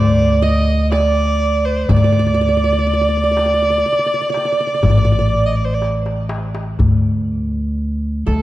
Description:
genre	Turkish makam ensemble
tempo	122 BPM (eighths)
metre	10/8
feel	straight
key	unclear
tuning	A4 = 437 Hz
part	warm violin	melody	0.0-8.4 s	A4 to Eb5	-18 LUFS	right 1 dB	tape echo
part	qanun	second line	0.0-8.4 s	A4 to Eb5	-24 LUFS	right 5 dB	none
part	upright bass	bass	0.0-8.4 s	A1 to D2	-17 LUFS	equal	none
part	darbuka	percussion	0.4-8.4 s	none	-19 LUFS	left 2 dB	none
room	moderate scoring stage reverb, RT60 1.8 s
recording	dark, warm production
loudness	-14 LUFS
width	side -15 dB against mid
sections	0.0-6.8 A section; 6.8-8.4 B section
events	drum fill 5.8-6.8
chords	none

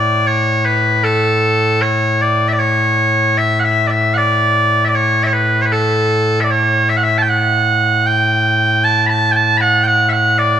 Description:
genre	scottish traditional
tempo	77 BPM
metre	3/4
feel	straight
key	A mixolydian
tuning	A4 = 438 Hz
part	loud bright bagpipes	solo	0.0-10.6 s	A2 to B5	-12 LUFS	equal	none
room	moderate scoring stage reverb, RT60 1.7 s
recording	nothing above 10.7 kHz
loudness	-12 LUFS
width	side -9 dB against mid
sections	0.0-10.6 A section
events	none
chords	none

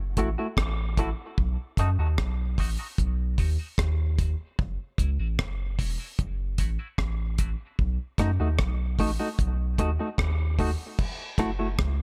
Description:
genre	dub reggae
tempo	75 BPM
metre	4/4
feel	straight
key	F# dorian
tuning	A4 = 440 Hz
part	soft dub sub bass	bass	0.0-12.0 s	E1 to F#2	-29 LUFS	equal	none
part	semi-hollow electric guitar	accompaniment	0.2-11.7 s	A3 to F#4	-34 LUFS	equal	lush chorus, high-pass filter, tape echo
part	deep reggae drum kit	drums	0.2-12.0 s	crash cymbal, hi-hat, kick drum, rim click	-30 LUFS	equal	none
room	small room ambience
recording	none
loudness	-27 LUFS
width	mono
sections	0.0-11.0 A section; 11.0-12.0 B section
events	filter sweep on clean electric guitar 0.0-7.8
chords	0.0 F#m7; 1.4 B7; 4.6 F#m7; 7.8 B7; 11.0 F#m7

